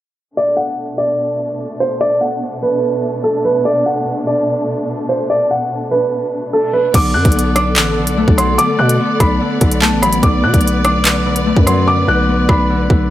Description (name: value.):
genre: hip hop, drill.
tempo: 146 BPM.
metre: 4/4.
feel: half-time.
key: B minor.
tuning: A4 = 440 Hz.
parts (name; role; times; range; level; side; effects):
dark concert grand piano; melody; 0.4-13.1 s; A4 to F#6; -16 LUFS; right 1 dB; tape echo.
dark symphonic string section; sustained chords; 0.4-13.1 s; B2 to D5; -21 LUFS; equal; none.
Celtic harp; accompaniment; 6.9-13.1 s; D3 to D4; -19 LUFS; left 4 dB; none.
growling 808-style bass; bass; 6.9-13.1 s; A1 to B2; -16 LUFS; equal; none.
drill drum kit; drums; 6.9-13.0 s; crash cymbal, handclaps, hi-hat, kick drum, rim click; -14 LUFS; equal; none.
room: light reverb, studio reverb.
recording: low-pass filter.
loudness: -12 LUFS.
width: side -13 dB against mid.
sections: 0.4-6.9 A section; 6.9-13.1 B section.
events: filter sweep 0.4-6.9; hi-hats muted 11.9-13.1.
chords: 0.4 Bm7.